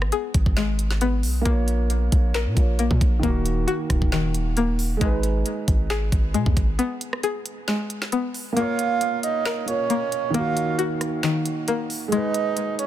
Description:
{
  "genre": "hip hop, trap",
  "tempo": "135 BPM",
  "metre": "4/4",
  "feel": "half-time",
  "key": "unclear",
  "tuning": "A4 = 443 Hz",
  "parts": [
    { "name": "dark concert grand piano", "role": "accompaniment", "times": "0.0-12.9 s", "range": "Eb3 to Db5", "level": "-28 LUFS", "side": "right 3 dB", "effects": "none" },
    { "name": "string-like resonator pluck", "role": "arpeggios", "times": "0.0-12.9 s", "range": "Eb3 to Bb4", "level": "-27 LUFS", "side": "left 5 dB", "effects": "chorus, ping-pong delay" },
    { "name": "hard-hitting 808-style bass", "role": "bass", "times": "0.0-6.8 s", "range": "Eb1 to Cb3", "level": "-23 LUFS", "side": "equal", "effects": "none" },
    { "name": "trap drum kit", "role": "drums", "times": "0.0-12.9 s", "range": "handclaps, hi-hat, kick drum, rim click, snare drum", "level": "-24 LUFS", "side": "equal", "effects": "none" },
    { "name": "breathy flute-like synth lead", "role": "second line", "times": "8.6-12.9 s", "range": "Db5 to F5", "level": "-25 LUFS", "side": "right 6 dB", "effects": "chorus, ping-pong delay" }
  ],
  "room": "little or no reverb",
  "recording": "dense, heavily limited modern master",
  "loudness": "-20 LUFS",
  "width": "side -12 dB against mid",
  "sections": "0.0-12.9 A section",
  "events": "break 6.8-8.6; kick muted 8.6-12.9",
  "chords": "0.0 Abm; 1.5 Bbm; 3.2 Ebm; 5.0 Abm; 8.6 Bbm; 10.3 Ebm; 12.1 Abm"
}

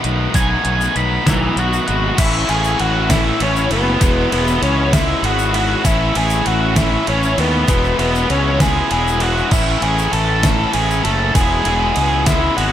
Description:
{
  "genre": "indie rock",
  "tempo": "66 BPM (dotted quarters)",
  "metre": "6/8",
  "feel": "straight",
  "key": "E major",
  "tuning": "A4 = 439 Hz",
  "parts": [
    { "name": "raw garage guitar", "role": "riff", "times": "0.0-12.7 s", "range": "E2 to F#4", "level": "-22 LUFS", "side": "left 10 dB", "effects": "overdrive" },
    { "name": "scooped high-gain guitar", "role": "riff", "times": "0.0-12.7 s", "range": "A2 to E4", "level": "-22 LUFS", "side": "right 12 dB", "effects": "distortion, lush chorus" },
    { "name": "fuzz fingered electric bass", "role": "bass", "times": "0.0-12.7 s", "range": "E1 to D#2", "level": "-20 LUFS", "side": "equal", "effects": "overdrive" },
    { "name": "detuned 8-bit digital drum machine", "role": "drums", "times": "0.0-12.7 s", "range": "crash cymbal, hi-hat, kick drum, ride cymbal, snare drum", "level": "-20 LUFS", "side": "equal", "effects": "overdrive" },
    { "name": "egg shaker", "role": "percussion", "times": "0.1-12.4 s", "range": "none", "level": "-32 LUFS", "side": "left 11 dB", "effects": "none" },
    { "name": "octave-fuzz lead guitar", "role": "melody", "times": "0.4-12.7 s", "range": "B3 to B5", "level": "-20 LUFS", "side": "equal", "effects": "distortion" },
    { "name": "combo organ", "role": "sustained chords", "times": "2.2-12.7 s", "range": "A3 to C#6", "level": "-30 LUFS", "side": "right 2 dB", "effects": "none" }
  ],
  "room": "digital ambience",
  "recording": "none",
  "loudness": "-14 LUFS",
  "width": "side -10 dB against mid",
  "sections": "0.0-2.2 A section; 2.2-12.7 B section",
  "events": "lead electric guitar solo 0.0-2.2",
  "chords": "0.0 B7; 2.2 A; 4.0 E6; 5.9 A; 7.7 E6; 9.5 A; 11.4 E6"
}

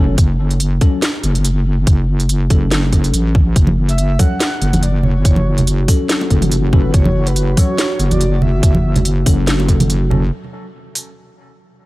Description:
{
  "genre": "deep dubstep",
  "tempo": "142 BPM",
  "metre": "4/4",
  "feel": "swing 55% on 16ths, half-time",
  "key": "F# minor",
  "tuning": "A4 = 442 Hz",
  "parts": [
    { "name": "bell-like tine electric piano", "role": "stabs", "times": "0.0-10.2 s", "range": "F#3 to A4", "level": "-24 LUFS", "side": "left 3 dB", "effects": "phaser, low-pass filter, dub echo" },
    { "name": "wobble bass", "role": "bass", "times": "0.0-10.3 s", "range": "F#1 to A1", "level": "-15 LUFS", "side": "equal", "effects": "chorus" },
    { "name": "electronic kick drum", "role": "drums", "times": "0.2-9.8 s", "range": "none", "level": "-13 LUFS", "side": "equal", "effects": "none" },
    { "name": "garage drum kit", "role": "drums", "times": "0.2-11.0 s", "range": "hi-hat, snare drum", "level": "-20 LUFS", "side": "equal", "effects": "none" },
    { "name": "dark analog pad", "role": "sustained chords", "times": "3.6-11.9 s", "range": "F#4", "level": "-26 LUFS", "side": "right 2 dB", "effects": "chorus, phaser" },
    { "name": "bongos and congas", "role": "percussion", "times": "3.7-10.2 s", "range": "none", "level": "-19 LUFS", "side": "right 1 dB", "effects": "none" },
    { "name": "breathy flute-like synth lead", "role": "melody", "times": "3.9-9.1 s", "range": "B4 to F#5", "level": "-26 LUFS", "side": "equal", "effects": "tremolo, analog chorus, dub echo" }
  ],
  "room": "little or no reverb",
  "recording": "dry, gritty hardware recording",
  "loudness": "-12 LUFS",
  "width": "side -19 dB against mid",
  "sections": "0.0-10.3 A section; 10.3-11.9 B section",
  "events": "kick drops out 9.9-10.3",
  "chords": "0.0 F#m; 10.3 N.C."
}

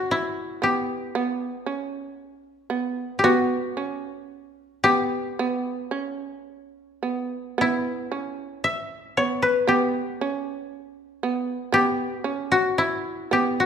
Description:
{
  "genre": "japanese traditional, Japanese chamber music",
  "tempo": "57 BPM",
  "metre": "2/4",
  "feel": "rubato",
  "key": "E kumoi",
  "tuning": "A4 = 442 Hz",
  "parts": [
    { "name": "koto", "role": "melody", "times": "0.0-13.7 s", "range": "E4 to E5", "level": "-22 LUFS", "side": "left 3 dB", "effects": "none" },
    { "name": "shamisen", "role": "second line", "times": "0.0-13.7 s", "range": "B3 to C#4", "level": "-27 LUFS", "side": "right 5 dB", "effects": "none" }
  ],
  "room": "moderate concert hall reverb, RT60 1.6 s",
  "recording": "minimal, uncompressed stereo recording",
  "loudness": "-22 LUFS",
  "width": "side -7 dB against mid",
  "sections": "0.0-13.7 A section",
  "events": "none",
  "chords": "none"
}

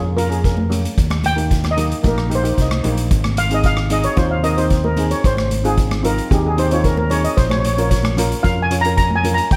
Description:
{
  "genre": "calypso",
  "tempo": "112 BPM",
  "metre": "4/4",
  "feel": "straight",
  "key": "Ab major",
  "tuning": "A4 = 441 Hz",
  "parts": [
    { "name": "steel pan", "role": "melody", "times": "0.0-9.6 s", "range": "G4 to Bb5", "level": "-23 LUFS", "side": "equal", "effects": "analog delay" },
    { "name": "steel pan", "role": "accompaniment", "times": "0.0-9.5 s", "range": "Bb3 to Db5", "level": "-26 LUFS", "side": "equal", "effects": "none" },
    { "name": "fingered electric bass", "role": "bass", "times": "0.0-9.6 s", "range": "Ab1 to F2", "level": "-22 LUFS", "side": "equal", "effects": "none" },
    { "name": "street-band drum kit", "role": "drums", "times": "0.2-9.6 s", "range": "hi-hat, kick drum, rim click", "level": "-23 LUFS", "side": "equal", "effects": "none" },
    { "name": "congas", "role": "percussion", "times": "0.6-9.4 s", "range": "none", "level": "-29 LUFS", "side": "equal", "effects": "none" }
  ],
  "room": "moderate studio ambience, RT60 0.5 s",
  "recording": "none",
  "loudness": "-17 LUFS",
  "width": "mono",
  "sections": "0.0-9.6 A section",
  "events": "steel pan solo 0.0-9.6",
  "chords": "0.0 Bbm; 1.0 Eb; 3.1 Ab; 7.4 Bbm"
}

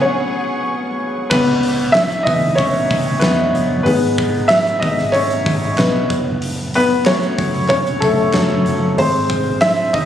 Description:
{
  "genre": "piano-driven pop",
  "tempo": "94 BPM",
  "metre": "4/4",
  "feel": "straight",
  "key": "C# minor",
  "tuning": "A4 = 440 Hz",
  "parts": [
    { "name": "warm upright piano", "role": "accompaniment", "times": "0.0-10.1 s", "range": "E3 to E5", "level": "-15 LUFS", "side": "left 1 dB", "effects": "none" },
    { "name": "clear studio string section", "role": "sustained chords", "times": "0.0-1.3 s", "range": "G#4 to C#6", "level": "-26 LUFS", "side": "right 1 dB", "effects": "none" },
    { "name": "vintage muted picked electric bass", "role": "bass", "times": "1.3-10.1 s", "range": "F#1 to E2", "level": "-23 LUFS", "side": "right 1 dB", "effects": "none" },
    { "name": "huge arena drum kit", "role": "drums", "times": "1.3-10.1 s", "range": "crash cymbal, hi-hat, kick drum, snare drum", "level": "-22 LUFS", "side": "right 1 dB", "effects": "none" },
    { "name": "group handclap", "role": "percussion", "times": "2.0-9.8 s", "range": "none", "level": "-29 LUFS", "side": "right 2 dB", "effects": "none" }
  ],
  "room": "light reverb",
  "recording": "recorded on a phone in the room, club reverb",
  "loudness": "-14 LUFS",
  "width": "side -10 dB against mid",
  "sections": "0.0-1.3 A section; 1.3-10.1 B section",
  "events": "upright piano solo 0.0-1.3, 1.3-10.1; break 0.0-1.3",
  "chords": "0.0 F#sus2; 1.3 C#m7; 3.9 G#m; 6.1 F#m; 9.0 G#"
}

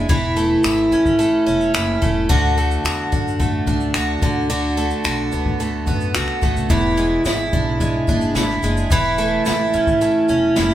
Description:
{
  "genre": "acoustic pop",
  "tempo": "109 BPM",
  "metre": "4/4",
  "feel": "straight",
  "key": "unclear",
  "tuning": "A4 = 440 Hz",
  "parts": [
    { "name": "picked twelve-string acoustic guitar", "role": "accompaniment", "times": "0.0-10.7 s", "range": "E2 to F#4", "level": "-18 LUFS", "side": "right 1 dB", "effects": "none" },
    { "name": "upright bass", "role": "bass", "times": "0.0-10.7 s", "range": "E1 to F#2", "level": "-24 LUFS", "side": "equal", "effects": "none" },
    { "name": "jazz brush drum kit", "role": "drums", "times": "0.1-10.7 s", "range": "finger snaps, kick drum, shaker, snare drum", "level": "-22 LUFS", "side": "left 1 dB", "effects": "none" },
    { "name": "tambourine", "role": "percussion", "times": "0.4-10.7 s", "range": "none", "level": "-39 LUFS", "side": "left 6 dB", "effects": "none" }
  ],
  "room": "moderate studio reverb, RT60 0.6 s",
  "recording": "band playing live in one room",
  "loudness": "-16 LUFS",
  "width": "side -12 dB against mid",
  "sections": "0.0-10.7 A section",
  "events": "none",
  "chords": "0.1 A/E; 2.3 D; 4.2 Bm7; 6.7 E7; 8.9 A/E"
}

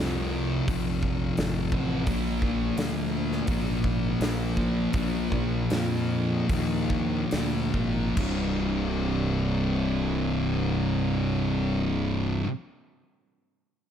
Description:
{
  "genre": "stoner and doom metal",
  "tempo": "68-86 BPM",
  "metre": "4/4",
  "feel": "straight",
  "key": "unclear",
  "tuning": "A4 = 438 Hz",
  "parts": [
    { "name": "thick fuzz guitar", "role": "riff", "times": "0.0-12.5 s", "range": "C2 to Bb3", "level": "-28 LUFS", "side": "left 8 dB", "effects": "distortion" },
    { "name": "thick fuzz guitar", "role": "riff", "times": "0.0-12.5 s", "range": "C2 to Bb3", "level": "-30 LUFS", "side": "right 8 dB", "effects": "distortion" },
    { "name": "fuzz fingered electric bass", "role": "bass", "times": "0.0-12.4 s", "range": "C1 to F2", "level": "-31 LUFS", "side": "equal", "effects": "overdrive" },
    { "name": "big rock drum kit", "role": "drums", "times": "0.0-8.4 s", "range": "crash cymbal, hi-hat, kick drum, snare drum", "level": "-32 LUFS", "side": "equal", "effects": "none" }
  ],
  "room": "little or no reverb",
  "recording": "none",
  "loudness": "-24 LUFS",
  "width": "side -9 dB against mid",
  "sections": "0.0-8.2 A section; 8.2-11.7 B section",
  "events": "slowing down 2.1-8.2",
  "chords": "0.0 Fm; 2.1 Bb; 8.2 C5"
}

